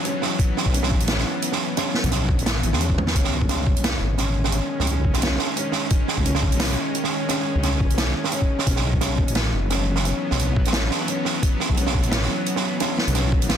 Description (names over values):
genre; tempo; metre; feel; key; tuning
half-time drum and bass; 174 BPM; 4/4; swing 54% on 16ths, half-time; unclear; A4 = 441 Hz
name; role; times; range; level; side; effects
bowed-like drone; sustained chords; 0.0-13.6 s; D#3 to C#4; -28 LUFS; equal; built-in reverb, sidechain pumping
felt-muted upright piano; arpeggios; 0.0-13.6 s; C#4; -30 LUFS; left 3 dB; tape echo
swinging big-band drum kit; drums; 0.0-13.6 s; hi-hat, snare drum, toms; -24 LUFS; right 4 dB; none
electronic kick drum; drums; 0.4-13.4 s; none; -21 LUFS; equal; overdrive
deep soft wobble bass; bass; 0.7-13.6 s; F#1 to E2; -23 LUFS; equal; chorus
room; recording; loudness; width
little or no reverb; dense, heavily limited modern master; -19 LUFS; side -9 dB against mid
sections
0.0-13.6 A section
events
drum fill 3.0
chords
0.0 Bsus4; 3.1 C#sus2; 8.7 Bsus4